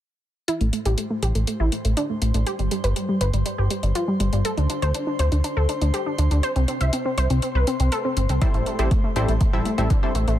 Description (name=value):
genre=progressive house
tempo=121 BPM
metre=4/4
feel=straight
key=A minor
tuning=A4 = 439 Hz
part: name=wide unison pluck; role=arpeggios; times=0.5-10.4 s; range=G3 to E5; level=-25 LUFS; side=equal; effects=sidechain pumping, tape echo
part: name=electronic hi-hat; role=drums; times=0.5-10.4 s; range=none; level=-32 LUFS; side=left 1 dB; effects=sidechain pumping on hats
part: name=drifting glass-harmonics texture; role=texture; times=0.9-10.4 s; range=C5 to C6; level=-34 LUFS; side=left 4 dB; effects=chorus, built-in reverb, sidechain pumping
part: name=fat analog bass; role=bass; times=0.6-10.4 s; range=G1 to D2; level=-21 LUFS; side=equal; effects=sidechain pumping
part: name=supersaw stab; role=stabs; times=8.4-10.1 s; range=G3 to E5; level=-26 LUFS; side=left 2 dB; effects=sidechain pumping, tape echo
part: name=electronic kick drum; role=drums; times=8.4-10.0 s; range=none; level=-20 LUFS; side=equal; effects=none
room=little or no reverb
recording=none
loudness=-20 LUFS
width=side -12 dB against mid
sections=0.5-10.4 A section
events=filter sweep on analog synth bass 0.5-10.4; filter sweep on synth pluck 0.5-10.4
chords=0.5 Am; 2.5 Gsus4; 4.4 D7(no3); 6.4 C5; 8.4 Am7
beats=| 0.48 0.98 1.47 1.97 | 2.47 2.96 3.46 3.95 | 4.45 4.95 5.44 5.94 | 6.43 6.93 7.42 7.92 | 8.42 8.91 9.41 9.90